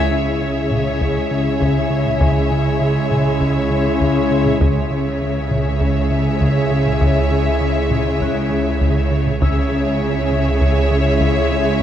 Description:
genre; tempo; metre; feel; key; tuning
cinematic, suspense film score; 100 BPM; 4/4; straight; C# harmonic minor; A4 = 440 Hz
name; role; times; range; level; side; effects
warm studio violin section; melody; 0.0-11.8 s; E5; -26 LUFS; left 4 dB; none
warm studio violin section; second line; 0.0-11.8 s; C#5; -26 LUFS; left 2 dB; none
rich studio viola section; accompaniment; 0.0-11.8 s; G#4; -26 LUFS; right 1 dB; none
ethereal airy pad; sustained chords; 0.6-11.8 s; C#5 to G#5; -29 LUFS; left 2 dB; ensemble chorus, built-in reverb, phaser
mellow French horn section; sustained chords; 0.0-11.8 s; C#4 to E4; -25 LUFS; left 5 dB; none
warm trombone section; sustained chords; 0.0-11.8 s; C#3 to G#3; -27 LUFS; right 3 dB; none
rich studio cello section; bass; 0.0-11.8 s; C#3; -26 LUFS; right 3 dB; none
rich studio double bass section; bass; 0.0-11.8 s; C#2; -21 LUFS; right 2 dB; none
smooth gliding synth bass; riff; 0.1-11.7 s; C#3; -22 LUFS; left 1 dB; none
Celtic harp; texture; 0.1-11.8 s; E4 to F#6; -33 LUFS; left 4 dB; none
solo taiko drums; drums; 0.7-11.8 s; none; -22 LUFS; equal; none
room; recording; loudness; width
moderate scoring stage reverb, RT60 2.0 s; dark, warm production; -15 LUFS; side -10 dB against mid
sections
0.0-11.8 A section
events
band accent 0.0-0.4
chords
0.0 C#m

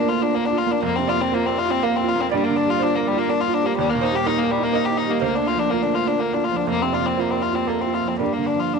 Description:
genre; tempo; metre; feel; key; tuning
neoclassical piano and strings; 122 BPM; 3/4; rubato; unclear; A4 = 440 Hz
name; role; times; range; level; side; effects
rich violin; melody; 0.0-8.8 s; G3 to G4; -21 LUFS; left 7 dB; none
warm cello; second line; 0.0-8.8 s; Bb3; -27 LUFS; right 8 dB; none
felt-muted upright piano; accompaniment; 0.0-8.8 s; D2 to F5; -23 LUFS; right 9 dB; none
room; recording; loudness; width
moderate echo chamber reverb, RT60 2.1 s; 1960s-style stereo with parts hard left and right; -18 LUFS; side -5 dB against mid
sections
0.0-8.8 A section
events
none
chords
0.0 Bb/D; 0.8 Fsus4; 2.3 Gm7; 3.8 Eb; 5.2 Bb/D; 6.7 Fsus4; 8.2 Gm7

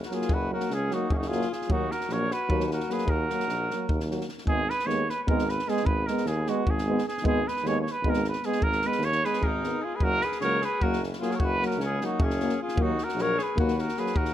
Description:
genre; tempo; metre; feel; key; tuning
balkan folk, Balkan brass band; 303 BPM (eighths); 7/8; straight; unclear; A4 = 440 Hz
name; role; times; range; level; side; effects
clear tuba; bass; 0.0-14.3 s; Gb1 to Eb2; -31 LUFS; equal; none
compact cocktail drum kit; percussion; 0.0-14.3 s; kick drum, snare drum; -30 LUFS; equal; none
mellow trumpet; melody; 0.1-14.3 s; Gb4 to Db5; -30 LUFS; right 3 dB; none
clear alto saxophone; second line; 0.1-4.1, 9.2-14.3 s; Db4 to Bb4; -33 LUFS; left 5 dB; none
clear euphonium; accompaniment; 0.1-14.1 s; Gb3 to Ab3; -34 LUFS; right 5 dB; none
mellow French horn; accompaniment; 0.1-14.1 s; Bb3 to Cb4; -34 LUFS; left 4 dB; none
room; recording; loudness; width
light reverb; close, detailed microphones; -24 LUFS; side -11 dB against mid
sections
0.0-4.5 A section; 4.5-14.3 A section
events
none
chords
0.0 Gb; 1.7 Ebm; 4.5 Abm; 10.0 Gb; 12.8 Ebm

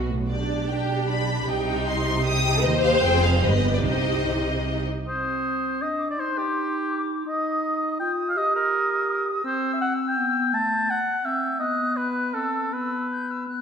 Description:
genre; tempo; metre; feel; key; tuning
classical; 144-168 BPM; 3/4; rubato; C minor, E minor from 9.4 s; A4 = 442 Hz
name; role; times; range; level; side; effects
rich symphonic violin section; second line; 0.0-4.8 s; D4 to Eb5; -26 LUFS; left 4 dB; none
rich symphonic viola section; accompaniment; 0.0-4.8 s; B3 to Ab4; -28 LUFS; right 3 dB; none
rich studio cello section; bass; 0.0-4.9 s; Eb2 to C3; -28 LUFS; right 2 dB; none
rich symphonic double bass section; bass; 0.0-4.9 s; F1 to Eb2; -27 LUFS; right 2 dB; none
rich symphonic violin section; melody; 0.3-4.7 s; C5 to Eb6; -28 LUFS; left 2 dB; none
dark clarinet; second line; 5.1-13.6 s; A3 to G4; -29 LUFS; equal; none
silver concert flute; second line; 5.1-13.6 s; C6 to G6; -30 LUFS; left 1 dB; none
warm oboe; second line; 5.1-13.5 s; G4 to A5; -25 LUFS; equal; none
room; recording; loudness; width
wet scoring stage reverb, RT60 2.0 s; minimal, uncompressed stereo recording; -22 LUFS; side -7 dB against mid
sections
0.0-5.1 A section; 5.1-13.6 B section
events
none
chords
0.3 G/B; 1.5 Cm; 2.7 Eb; 3.0 Fm; 3.4 G; 3.8 Cm; 6.2 Cm/Eb; 7.3 Ebsus2; 8.4 Eb/G; 9.4 C; 10.5 Am7; 11.6 B; 12.3 Am/C; 12.7 Em/B

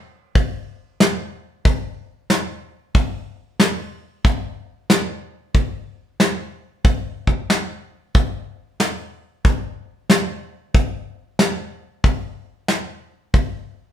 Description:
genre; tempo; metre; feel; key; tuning
country; 92 BPM; 4/4; swing 66% on 8ths; none; none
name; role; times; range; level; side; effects
soft brush drum kit; drums; 0.4-13.5 s; hi-hat, kick drum, snare drum; -16 LUFS; equal; none
room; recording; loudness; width
moderate studio reverb, RT60 0.7 s; band playing live in one room; -18 LUFS; side -10 dB against mid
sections
0.0-13.9 A section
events
none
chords
none

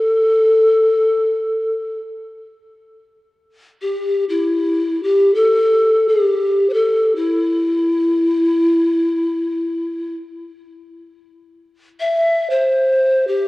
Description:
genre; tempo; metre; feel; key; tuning
world meditative, free-time meditation music; free time; none; none; A minor pentatonic; A4 = 443 Hz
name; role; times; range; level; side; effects
breathy mellow polished pan flute; solo; 0.0-13.5 s; E4 to E5; -14 LUFS; left 1 dB; cassette tape
room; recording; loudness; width
wet spring reverb, RT60 2.4 s; home recording on cassette; -14 LUFS; side -18 dB against mid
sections
0.0-13.5 A section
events
none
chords
none

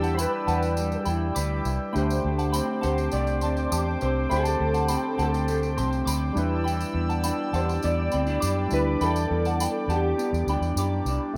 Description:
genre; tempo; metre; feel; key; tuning
indie pop, bedroom pop; 102 BPM; 4/4; straight; E minor; A4 = 442 Hz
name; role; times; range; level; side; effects
electric guitar through a small old amp; melody; 0.0-10.4 s; G4 to D5; -32 LUFS; equal; ensemble chorus, slapback echo
soft synth bell; second line; 0.0-11.2 s; F#5 to D6; -35 LUFS; equal; phaser, ensemble chorus, slapback echo
electric guitar through a small old amp; accompaniment; 0.0-11.4 s; D3 to B4; -34 LUFS; equal; lush chorus, warbly pitch drift
warbly lo-fi synth keys; accompaniment; 0.0-11.4 s; G3 to C5; -35 LUFS; equal; chorus
warm analog pad; sustained chords; 0.0-11.3 s; C5 to E6; -35 LUFS; equal; chorus
vintage muted fingered electric bass; bass; 0.0-11.4 s; C2 to F#2; -29 LUFS; equal; none
tambourine; percussion; 0.0-11.2 s; none; -41 LUFS; equal; none
room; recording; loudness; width
light reverb; rough home demo mix; -25 LUFS; mono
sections
0.0-11.4 A section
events
none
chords
0.0 Em7; 2.0 D7sus4; 6.4 Em7

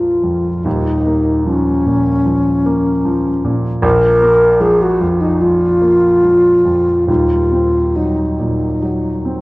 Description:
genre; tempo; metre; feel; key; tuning
classical, impressionist duo for alto flute and grand piano; 68-77 BPM; 4/4; rubato; unclear; A4 = 439 Hz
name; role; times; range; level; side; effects
mellow hollow alto flute; melody; 0.0-9.4 s; Db4 to Bb4; -13 LUFS; equal; none
warm grand piano; accompaniment; 0.0-9.4 s; Eb1 to C4; -16 LUFS; right 1 dB; none
room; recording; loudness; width
wet scoring stage reverb, RT60 1.9 s; worn, warbling old tape, cassette tape, warbly pitch drift; -11 LUFS; side -21 dB against mid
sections
0.0-9.4 A section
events
none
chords
0.0 Bb5; 0.7 Ebsus2; 3.8 Bb5; 7.1 Ebm6

